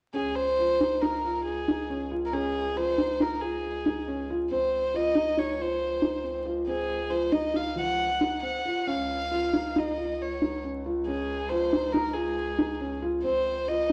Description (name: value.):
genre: contemporary instrumental, chamber music in an uneven meter.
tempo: 137 BPM.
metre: 5/4.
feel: straight.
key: Db major.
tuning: A4 = 438 Hz.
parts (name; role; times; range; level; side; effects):
dark violin; melody; 0.1-13.9 s; Ab4 to Gb5; -31 LUFS; equal; none.
felt-muted upright piano; arpeggios; 0.1-13.9 s; F3 to F4; -31 LUFS; equal; none.
warm bass clarinet; bass; 0.1-13.9 s; Db2; -42 LUFS; equal; none.
room: moderate recital hall reverb, RT60 1.5 s.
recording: vinyl crackle.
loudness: -28 LUFS.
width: mono.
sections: 0.1-13.9 A section.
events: none.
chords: 0.1 Dbadd9; 4.5 Ab7/Db (rootless); 8.9 Dbadd9; 13.3 Dbmaj9.